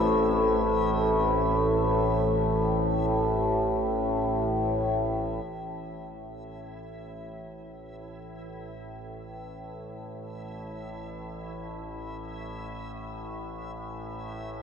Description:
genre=ambient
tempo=free time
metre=none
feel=none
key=A minor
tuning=A4 = 440 Hz
part: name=dark analog pad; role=sustained chords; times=0.0-5.5 s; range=A3 to C5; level=-30 LUFS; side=left 1 dB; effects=chorus
part: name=overtone-sweeping drone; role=drone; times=0.0-14.6 s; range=A1 to A2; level=-28 LUFS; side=equal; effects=chorus, built-in reverb
part: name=backwards swelling texture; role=texture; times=0.0-14.6 s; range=E4 to E5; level=-47 LUFS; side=equal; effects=built-in reverb
room=wet huge ambient reverb, RT60 7.6 s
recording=worn, warbling old tape, cassette tape, warbly pitch drift, nothing above 10.6 kHz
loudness=-25 LUFS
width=side -7 dB against mid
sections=0.0-5.5 A section; 5.5-14.6 B section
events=fade-out on synth texture 0.0-5.5; fade-in on synth texture 5.5-14.6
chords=0.0 Am; 5.5 A5

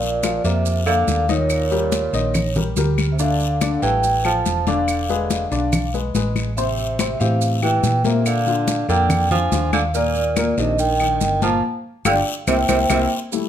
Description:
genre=Afro-Cuban jazz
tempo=142 BPM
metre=4/4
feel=straight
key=unclear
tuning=A4 = 440 Hz
part: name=vibraphone with medium hard mallets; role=melody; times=0.0-13.0 s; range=C5 to A5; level=-22 LUFS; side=right 1 dB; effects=none
part: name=mellow tenor saxophone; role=second line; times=0.0-13.0 s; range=Bb2 to F3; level=-25 LUFS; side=right 7 dB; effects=none
part: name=dark baby grand piano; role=accompaniment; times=0.0-13.5 s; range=Bb2 to F5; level=-24 LUFS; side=left 6 dB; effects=none
part: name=hollow-body short-scale fingered electric bass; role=bass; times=0.0-13.1 s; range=E1 to Bb2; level=-22 LUFS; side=right 1 dB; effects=none
part: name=congas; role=percussion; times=0.0-13.5 s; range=none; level=-26 LUFS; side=left 4 dB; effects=none
part: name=maracas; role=percussion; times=0.0-13.5 s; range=none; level=-32 LUFS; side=right 9 dB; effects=none
part: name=claves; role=percussion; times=0.2-13.0 s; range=none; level=-30 LUFS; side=left 3 dB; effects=none
part: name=guiro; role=percussion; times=0.2-13.5 s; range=none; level=-34 LUFS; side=left 6 dB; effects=none
room=moderate large studio reverb, RT60 0.9 s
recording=none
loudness=-17 LUFS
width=side -10 dB against mid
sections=0.0-13.3 A section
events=band accent 11.6-13.3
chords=0.0 Bbadd9; 1.5 Eb7; 3.2 Dmadd9; 4.9 E7b9; 6.6 Am7; 8.3 Bb6; 9.9 Ebmaj7; 11.6 G5; 12.5 C7

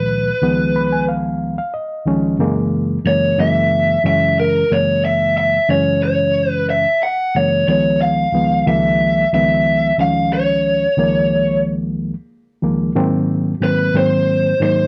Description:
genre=blues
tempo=91 BPM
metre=4/4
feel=straight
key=Db mixolydian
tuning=A4 = 442 Hz
part: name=lead guitar through a small cranked amp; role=melody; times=0.0-14.9 s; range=Bb4 to Gb5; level=-18 LUFS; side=equal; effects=overdrive, slapback echo
part: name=overdriven reed electric piano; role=accompaniment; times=0.0-14.9 s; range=Db2 to Cb6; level=-19 LUFS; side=equal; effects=spring reverb
room=little or no reverb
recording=dry, close 1970s-style studio recording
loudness=-16 LUFS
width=mono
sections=0.0-14.9 A section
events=reed electric piano fill 0.4-2.4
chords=0.0 Db9; 2.4 Gb9; 7.7 Db9; 13.0 Ab9

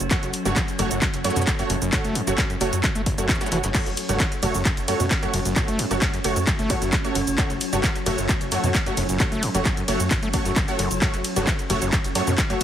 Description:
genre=driving peak-time techno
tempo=132 BPM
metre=4/4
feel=straight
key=F# phrygian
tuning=A4 = 439 Hz
part: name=tight sequencer bass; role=bass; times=0.0-12.6 s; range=F#1 to F#2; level=-28 LUFS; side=equal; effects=sidechain pumping
part: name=metallic inharmonic drone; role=drone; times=0.0-12.6 s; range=F#3 to C#4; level=-31 LUFS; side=equal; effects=chorus, built-in reverb, phaser, sidechain pumping
part: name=punchy analog drum machine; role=drums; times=0.0-12.6 s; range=crash cymbal, handclaps, hi-hat, ride cymbal, shaker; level=-26 LUFS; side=equal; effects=sidechain pumping on hats, sidechain pumping on perc, sidechain pumping on cymbals
part: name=overdriven acid bass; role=riff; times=0.1-12.6 s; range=F#1 to A3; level=-29 LUFS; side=equal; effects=distortion, sidechain pumping, dub echo
part: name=rave stab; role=stabs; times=0.1-12.6 s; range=A3 to C#5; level=-27 LUFS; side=right 1 dB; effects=chorus, built-in reverb, sidechain pumping, dub echo
part: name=breakbeat sampler-style drum kit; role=drums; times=0.1-12.6 s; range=hi-hat, shaker, snare drum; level=-36 LUFS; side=left 2 dB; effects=none
part: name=electronic kick drum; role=drums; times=0.1-12.5 s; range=none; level=-24 LUFS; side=equal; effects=overdrive
room=light reverb, digital ambience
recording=heavily compressed radio sound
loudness=-20 LUFS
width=side -10 dB against mid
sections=0.0-12.6 A section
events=none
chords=0.0 F#m

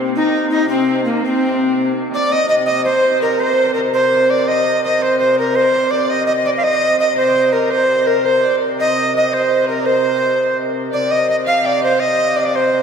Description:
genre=medieval dance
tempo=112 BPM (dotted quarters)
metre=6/8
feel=straight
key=C minor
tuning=A4 = 439 Hz
part: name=dark hurdy-gurdy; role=drone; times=0.0-12.8 s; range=C3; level=-23 LUFS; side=equal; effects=none
part: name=breathy bright bass recorder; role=melody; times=0.2-12.8 s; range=Bb3 to F5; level=-15 LUFS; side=right 1 dB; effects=none
part: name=rich fiddle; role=second line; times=0.2-12.8 s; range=Bb3 to G5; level=-22 LUFS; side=left 5 dB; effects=none
part: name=concert harp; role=second line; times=2.1-12.8 s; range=Bb4 to F5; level=-24 LUFS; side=right 2 dB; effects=slapback echo
room=wet cathedral reverb, RT60 6.4 s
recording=heard from further back in the room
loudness=-13 LUFS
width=side -6 dB against mid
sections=0.0-2.3 A section; 2.3-10.9 A section; 10.9-12.8 B section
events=none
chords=none

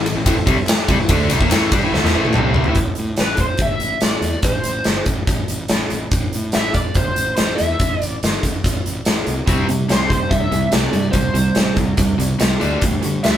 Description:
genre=classic rock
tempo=143 BPM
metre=4/4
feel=straight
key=unclear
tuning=A4 = 439 Hz
part: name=bright concert grand piano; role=accompaniment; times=0.0-2.7 s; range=A4 to C6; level=-29 LUFS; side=right 6 dB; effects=none
part: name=crunchy overdriven guitar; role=riff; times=0.0-2.8, 9.5-13.4 s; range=A2 to D4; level=-23 LUFS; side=right 5 dB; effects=none
part: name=overdriven electric guitar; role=riff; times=0.0-2.8, 9.5-13.4 s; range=A2 to D4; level=-21 LUFS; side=left 3 dB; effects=none
part: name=fuzz fingered electric bass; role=bass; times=0.0-13.4 s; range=G1 to D3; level=-24 LUFS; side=equal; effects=overdrive
part: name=big rock drum kit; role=drums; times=0.1-13.3 s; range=hi-hat, kick drum, ride cymbal, snare drum, toms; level=-18 LUFS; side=equal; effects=none
part: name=group handclap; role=percussion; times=0.7-2.4 s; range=none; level=-33 LUFS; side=left 2 dB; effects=none
part: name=lead guitar through a small cranked amp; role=melody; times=3.2-13.4 s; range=B4 to E5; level=-22 LUFS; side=equal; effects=wah, overdrive
room=light reverb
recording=band playing live in one room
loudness=-15 LUFS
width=side -11 dB against mid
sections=0.0-2.8 A section; 2.8-13.4 B section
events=drum fill 1.9-2.8; grand piano fill 1.9-2.8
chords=0.0 Am; 2.8 C5; 12.6 Dsus4

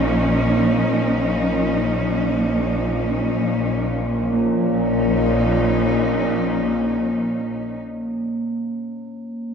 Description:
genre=dark ambient drone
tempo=free time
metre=none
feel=none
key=Bb minor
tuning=A4 = 440 Hz
part: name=rich symphonic cello section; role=sustained chords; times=0.0-7.8 s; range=F3 to Eb4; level=-22 LUFS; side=left 1 dB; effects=none
part: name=quartz singing bowl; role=arpeggios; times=0.0-7.4 s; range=Bb3 to Db4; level=-26 LUFS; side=right 1 dB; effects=analog delay
part: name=bowed-like drone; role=drone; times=0.0-7.4 s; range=Bb1 to Bb2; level=-21 LUFS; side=equal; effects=built-in reverb
room=wet spring reverb, RT60 2.6 s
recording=echo-heavy mix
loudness=-18 LUFS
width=side -7 dB against mid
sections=0.0-4.3 A section; 4.3-8.4 B section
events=none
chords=0.0 Bbm

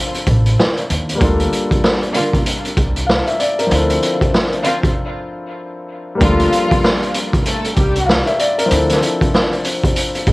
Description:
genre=hip hop, boom-bap hip-hop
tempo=96 BPM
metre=4/4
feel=swing 61% on 16ths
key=unclear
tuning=A4 = 441 Hz
part: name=warm upright piano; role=accompaniment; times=0.0-10.3 s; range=F3 to F5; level=-19 LUFS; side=left 2 dB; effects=cassette tape
part: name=raw garage drum kit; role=drums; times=0.1-10.3 s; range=hi-hat, kick drum, snare drum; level=-16 LUFS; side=equal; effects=none
part: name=upright bass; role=bass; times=0.3-10.3 s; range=A1 to Eb2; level=-18 LUFS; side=equal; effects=none
part: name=warm studio string section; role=stabs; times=1.2-8.2 s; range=D3 to A4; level=-22 LUFS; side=equal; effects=tape echo
room=light reverb, small room reverb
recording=home recording on cassette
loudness=-13 LUFS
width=side -22 dB against mid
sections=0.0-6.2 A section; 6.2-10.3 B section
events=break 5.0-6.2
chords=0.0 Dm7; 1.2 Gm7/D; 3.7 Dm7; 6.2 Gm7/D; 8.7 Dm7

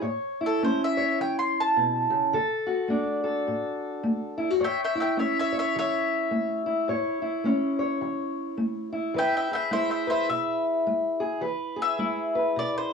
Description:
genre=acoustic country blues, solo or duo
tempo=105 BPM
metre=4/4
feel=swing 60% on 8ths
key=A major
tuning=A4 = 440 Hz
part: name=mandolin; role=melody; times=0.0-12.9 s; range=A4 to C6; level=-25 LUFS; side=left 1 dB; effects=cassette tape
part: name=fingerpicked steel-string acoustic guitar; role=accompaniment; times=0.0-12.9 s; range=A2 to C#5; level=-27 LUFS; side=equal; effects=cassette tape
room=wet booth ambience, RT60 0.2 s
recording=home recording on cassette, small room ambience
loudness=-24 LUFS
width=side -5 dB against mid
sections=0.0-12.9 A section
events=none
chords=0.0 A; 2.3 D; 4.6 A; 9.2 E

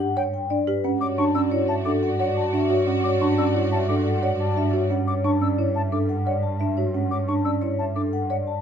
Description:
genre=classical, minimalist pattern music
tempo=177 BPM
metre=6/4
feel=straight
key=unclear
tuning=A4 = 442 Hz
part: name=vibraphone with medium mallets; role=melody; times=0.0-8.6 s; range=A4 to A5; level=-27 LUFS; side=left 7 dB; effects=none
part: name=folk marimba with soft mallets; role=arpeggios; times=0.0-8.5 s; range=C#4 to C#5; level=-25 LUFS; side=right 4 dB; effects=none
part: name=warm cello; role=bass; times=0.0-8.6 s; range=G2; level=-26 LUFS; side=right 2 dB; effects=none
part: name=concert flute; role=arpeggios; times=0.2-8.4 s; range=F#5 to E6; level=-31 LUFS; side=left 5 dB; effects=none
part: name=mellow French horn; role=second line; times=1.0-4.9 s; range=F#4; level=-28 LUFS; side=right 2 dB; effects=none
part: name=rich studio string section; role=sustained chords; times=1.0-4.9 s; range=F#4 to D5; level=-32 LUFS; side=left 1 dB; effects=none
room=light reverb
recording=close, detailed microphones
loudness=-20 LUFS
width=side -8 dB against mid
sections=0.0-8.6 A section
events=none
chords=0.0 Gmaj7; 1.0 Dadd9/G

